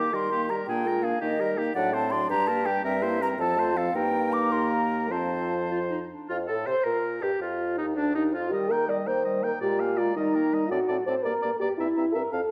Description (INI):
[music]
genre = quick classical-period movement for wind quintet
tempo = 110 BPM (dotted quarters)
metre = 6/8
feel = rubato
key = Bb major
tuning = A4 = 440 Hz
[part]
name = mellow hollow silver concert flute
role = melody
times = 0.0-12.4 s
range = D4 to D6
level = -33 LUFS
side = equal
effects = none
[part]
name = warm oboe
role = second line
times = 0.0-12.4 s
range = D4 to G5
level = -36 LUFS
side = equal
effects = none
[part]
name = mellow French horn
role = accompaniment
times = 0.0-12.5 s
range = F3 to D5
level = -31 LUFS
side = equal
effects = none
[part]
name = warm clarinet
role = accompaniment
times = 0.0-12.4 s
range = G3 to C5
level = -37 LUFS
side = equal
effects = none
[part]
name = warm bassoon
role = bass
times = 0.0-12.4 s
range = D2 to Eb3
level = -33 LUFS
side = equal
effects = none
[sound]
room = moderate recital hall reverb, RT60 1.2 s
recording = none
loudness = -26 LUFS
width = mono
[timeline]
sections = 0.0-6.3 A section; 6.3-12.5 A section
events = none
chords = 0.0 Eb; 0.7 Bb7; 1.2 Eb; 1.8 D7/A; 2.3 Gm; 2.8 C7/G; 3.4 F; 3.9 Eb/G; 5.1 F; 6.3 Bb5/F; 7.4 Ebsus2; 8.0 Dm; 8.5 Eb; 9.6 Bb7; 10.2 Eb; 10.7 D7/A; 11.2 Gm; 11.8 C7/G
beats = 0.14 | 0.68 1.22 | 1.76 2.30 | 2.85 3.39 | 3.95 4.52 | 5.11 5.70 | 6.29 6.85 | 7.41 7.96 | 8.52 9.07 | 9.62 10.17 | 10.71 11.25 | 11.79 12.33